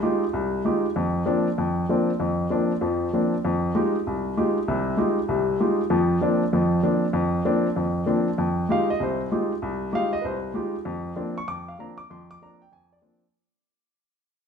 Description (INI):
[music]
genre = jazz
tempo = 194 BPM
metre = 4/4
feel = swing 63% on 8ths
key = unclear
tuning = A4 = 438 Hz
[part]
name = warm baby grand piano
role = solo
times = 0.0-13.2 s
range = C2 to D6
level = -22 LUFS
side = equal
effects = none
[sound]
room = wet large studio reverb, RT60 1.3 s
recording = minimal, uncompressed stereo recording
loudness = -22 LUFS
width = side -6 dB against mid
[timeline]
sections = 0.0-8.4 A section; 8.4-13.3 B section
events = fade-out 8.4-13.3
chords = 0.0 Fm9; 1.0 Bbadd9/F; 3.4 Fm9; 5.9 Bbadd9/F; 8.4 Fm9; 10.9 Bbadd9/F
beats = 0.02 0.33 0.64 | 0.95 1.26 1.57 1.88 | 2.19 2.50 2.81 3.12 | 3.43 3.74 4.04 4.36 | 4.67 4.97 5.28 5.59 | 5.90 6.21 6.52 6.83 | 7.14 7.45 7.76 8.07 | 8.38 8.69 9.00 9.31 | 9.62 9.93 10.23 10.54 | 10.85 11.16 11.47 11.78 | 12.09 12.39 12.70 13.01